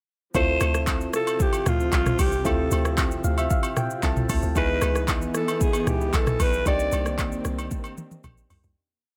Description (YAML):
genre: amapiano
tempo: 114 BPM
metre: 4/4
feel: straight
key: unclear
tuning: A4 = 440 Hz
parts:
  - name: soft electric-piano-like synth keys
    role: accompaniment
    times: 0.3-8.8 s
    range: Bb3 to A5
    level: -33 LUFS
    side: equal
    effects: chorus
  - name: dark studio string section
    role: sustained chords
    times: 0.3-8.7 s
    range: C3 to C4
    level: -36 LUFS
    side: equal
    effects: sidechain pumping
  - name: hollow log drum bass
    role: bass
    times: 0.3-8.8 s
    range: Bb1 to D2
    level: -28 LUFS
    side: equal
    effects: none
  - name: afro-pop drum kit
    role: drums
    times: 0.3-8.8 s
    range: handclaps, hi-hat, kick drum, rim click, shaker, toms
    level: -28 LUFS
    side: equal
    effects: none
  - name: breathy alto saxophone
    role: melody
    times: 0.4-7.2 s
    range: F4 to D5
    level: -29 LUFS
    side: equal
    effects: digital delay
  - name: agogo bells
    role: percussion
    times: 0.4-8.6 s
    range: none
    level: -36 LUFS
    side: equal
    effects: none
room: little or no reverb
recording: none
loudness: -24 LUFS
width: mono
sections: 0.3-8.8 drop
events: drop 0.3-8.8; synth keys fill 3.0-4.6; fade-out 6.7-8.8; drum fill 7.7-8.8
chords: 0.3 Dm9; 4.6 C#m9; 6.7 Cm9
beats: | 0.34 0.87 1.40 1.92 | 2.45 2.98 3.50 4.03 | 4.56 5.08 5.61 6.13 | 6.66 7.19 7.71 8.24